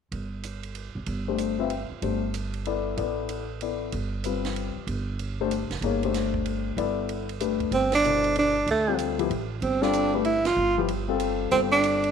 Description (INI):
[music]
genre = modal jazz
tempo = 190 BPM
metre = 3/4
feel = swing 63% on 8ths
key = G mixolydian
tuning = A4 = 440 Hz
[part]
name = upright bass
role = bass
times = 0.1-12.1 s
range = F1 to D2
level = -32 LUFS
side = right 2 dB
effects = none
[part]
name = compact cocktail drum kit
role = drums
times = 0.1-12.1 s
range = hi-hat, kick drum, ride cymbal, snare drum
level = -38 LUFS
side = right 10 dB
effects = none
[part]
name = warm concert grand piano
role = accompaniment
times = 1.3-12.1 s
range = B2 to E5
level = -28 LUFS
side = left 10 dB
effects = none
[part]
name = clear tenor saxophone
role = melody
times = 7.7-12.1 s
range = A3 to F4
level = -22 LUFS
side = right 3 dB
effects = none
[sound]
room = moderate echo chamber reverb, RT60 1.5 s, studio reverb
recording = 1960s-style stereo with parts hard left and right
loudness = -24 LUFS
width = side -7 dB against mid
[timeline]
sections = 0.1-7.7 A section; 7.7-12.1 B section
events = band accent 7.9, 10.4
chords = 0.1 Gsus4; 2.0 G69; 3.9 G7sus4; 5.8 G69; 7.7 G13sus4; 11.5 G9sus4